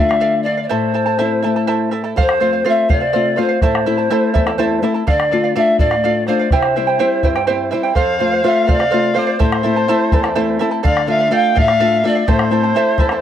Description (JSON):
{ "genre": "andean folk, Andean ensemble", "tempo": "83 BPM (dotted quarters)", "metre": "6/8", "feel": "straight", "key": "A minor", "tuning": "A4 = 444 Hz", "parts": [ { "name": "reedy pan flute", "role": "melody", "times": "0.0-13.2 s", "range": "C5 to F5", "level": "-18 LUFS", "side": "left 1 dB", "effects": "tape echo" }, { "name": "charango", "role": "accompaniment", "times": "0.0-13.2 s", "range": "E4 to A5", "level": "-19 LUFS", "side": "right 7 dB", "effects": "none" }, { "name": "nylon-string guitar", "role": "accompaniment", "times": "0.0-13.2 s", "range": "E2 to F4", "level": "-19 LUFS", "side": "left 4 dB", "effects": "none" }, { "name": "bombo", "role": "percussion", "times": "0.1-13.2 s", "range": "none", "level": "-17 LUFS", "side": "equal", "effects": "none" }, { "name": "dark erhu", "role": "second line", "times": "8.0-13.2 s", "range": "C5 to G5", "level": "-23 LUFS", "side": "left 5 dB", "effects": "none" } ], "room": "small room ambience", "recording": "dry, close 1970s-style studio recording", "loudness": "-13 LUFS", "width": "side -10 dB against mid", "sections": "0.0-2.2 A section; 2.2-13.2 A section", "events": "break 0.7-2.2", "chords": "0.0 Dm; 0.7 Am; 2.2 F; 3.6 Am; 5.1 Dm; 6.5 C; 8.0 F; 9.4 Am; 10.8 Dm; 12.3 Am", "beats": "| 0.71 1.44 | 2.16 2.89 | 3.62 4.34 | 5.07 5.79 | 6.51 7.24 | 7.96 8.68 | 9.40 10.12 | 10.84 11.55 | 12.27 12.99" }